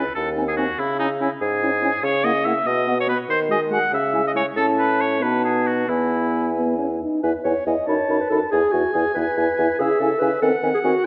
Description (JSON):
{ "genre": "quick classical-period movement for wind quintet", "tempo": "94 BPM (dotted quarters)", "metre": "6/8", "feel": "rubato", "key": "E major", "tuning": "A4 = 439 Hz", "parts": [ { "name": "clear oboe", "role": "second line", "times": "0.0-11.1 s", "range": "D#4 to A5", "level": "-26 LUFS", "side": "equal", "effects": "none" }, { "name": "mellow French horn", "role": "accompaniment", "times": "0.0-10.9 s", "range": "G#3 to E4", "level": "-29 LUFS", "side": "equal", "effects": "none" }, { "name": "mellow clarinet", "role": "accompaniment", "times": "0.0-11.1 s", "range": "D#4 to D#5", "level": "-27 LUFS", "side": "equal", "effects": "none" }, { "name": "mellow bassoon", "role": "bass", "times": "0.0-10.9 s", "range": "D#2 to D#3", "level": "-26 LUFS", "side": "equal", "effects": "none" }, { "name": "concert flute", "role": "melody", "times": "0.4-10.9 s", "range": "F#5 to B5", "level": "-31 LUFS", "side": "equal", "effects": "none" } ], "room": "wet scoring stage reverb, RT60 1.8 s", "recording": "none", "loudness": "-21 LUFS", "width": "mono", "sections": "0.0-7.2 A section; 7.2-11.1 A section", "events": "none", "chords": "0.2 G#/D#; 0.8 C#m; 2.0 F#7/C# (rootless); 2.7 B; 3.3 G#5/D#; 3.9 C#m; 4.6 A; 5.2 B7; 5.9 E; 7.2 E5; 7.9 B7/F#; 8.5 E; 9.8 C#m; 10.4 G#7/D# (rootless)", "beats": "0.17 | 0.79 1.42 | 2.04 2.67 | 3.29 3.93 | 4.57 5.22 | 5.88 6.56 | 7.23 7.88 | 8.52 9.16 | 9.80 10.42 | 11.05" }